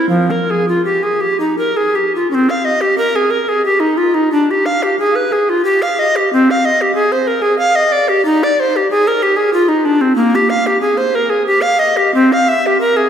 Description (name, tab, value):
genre	classical, baroque-style fantasia for unaccompanied recorder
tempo	74-96 BPM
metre	3/4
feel	rubato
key	C minor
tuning	A4 = 440 Hz
part	bright bass recorder	solo	0.0-13.1 s	F3 to F5	-11 LUFS	equal	none
room	wet church reverb, RT60 3.9 s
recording	recorded in a church or concert hall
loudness	-11 LUFS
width	side -8 dB against mid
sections	0.0-2.3 A section; 2.3-13.1 A section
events	none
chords	none